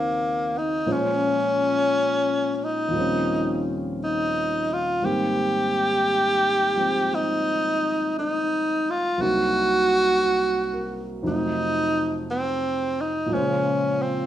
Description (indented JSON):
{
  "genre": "jazz ballad",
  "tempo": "58 BPM",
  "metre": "4/4",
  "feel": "swing 68% on 8ths",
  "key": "Bb minor",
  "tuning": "A4 = 442 Hz",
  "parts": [
    { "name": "warm tenor saxophone", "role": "melody", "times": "0.0-14.3 s", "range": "Bb3 to G4", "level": "-22 LUFS", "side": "equal", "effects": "none" },
    { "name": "warm grand piano", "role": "accompaniment", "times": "0.0-14.3 s", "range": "C2 to C5", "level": "-28 LUFS", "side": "right 1 dB", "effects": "none" }
  ],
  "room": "moderate large studio reverb, RT60 0.9 s",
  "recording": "none",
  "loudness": "-21 LUFS",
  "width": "side -12 dB against mid",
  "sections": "0.0-14.3 A section",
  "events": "none",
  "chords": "0.0 Ebm7; 0.9 Bbm7; 2.9 Eb13; 5.0 Abmaj7; 9.2 Cm7b5; 11.2 F7b9; 13.3 Bbm9",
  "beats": "| 0.86 1.90 2.94 3.98 | 5.03 6.07 7.11 8.14 | 9.18 10.21 11.24 12.27 | 13.31"
}